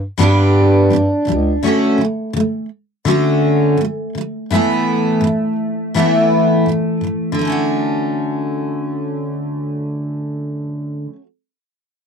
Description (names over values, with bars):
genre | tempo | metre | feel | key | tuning
acoustic pop | 84 BPM | 4/4 | swing 55% on 16ths | D major | A4 = 440 Hz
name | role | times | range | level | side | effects
mellow bass clarinet | bass | 0.0-1.6 s | C#2 to G2 | -18 LUFS | equal | none
picked steel-string acoustic guitar | accompaniment | 0.2-11.2 s | G2 to G4 | -15 LUFS | equal | double-tracked left and right
room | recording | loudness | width
light reverb | dry, close 1970s-style studio recording | -15 LUFS | side -6 dB against mid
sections
0.0-7.4 A section; 7.4-10.2 B section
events
none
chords
0.0 G; 1.6 Dmaj7; 4.5 Asus2; 7.4 Dmaj7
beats
0.19 0.91 | 1.63 2.35 3.06 3.78 | 4.50 5.22 5.94 6.66 | 7.37 8.09 8.81 9.53